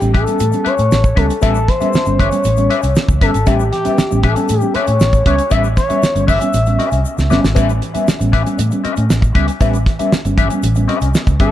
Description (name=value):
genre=funk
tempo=117 BPM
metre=4/4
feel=straight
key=A mixolydian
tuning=A4 = 439 Hz
part: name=expressive portamento lead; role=melody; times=0.0-7.0, 11.4-11.5 s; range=G4 to E5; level=-18 LUFS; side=left 2 dB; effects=chorus, tape echo
part: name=mellow electric guitar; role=accompaniment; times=0.0-11.5 s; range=C#4 to E5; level=-21 LUFS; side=left 7 dB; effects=wah
part: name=mellow reed electric piano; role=stabs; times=0.0-11.5 s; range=A2 to C#4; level=-20 LUFS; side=right 2 dB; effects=fast tremolo, tape echo
part: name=vintage muted fingered electric bass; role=bass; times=0.0-11.5 s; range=G1 to A2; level=-16 LUFS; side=equal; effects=none
part: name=damped 70s drum kit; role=drums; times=0.0-11.5 s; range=hi-hat, kick drum, snare drum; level=-16 LUFS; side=right 1 dB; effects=none
part: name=egg shaker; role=percussion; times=0.0-11.4 s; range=none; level=-34 LUFS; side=left 8 dB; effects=none
room=light reverb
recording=dark, warm production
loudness=-12 LUFS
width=side -12 dB against mid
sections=0.0-11.5 A section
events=drum fill 7.0-7.6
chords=0.0 A9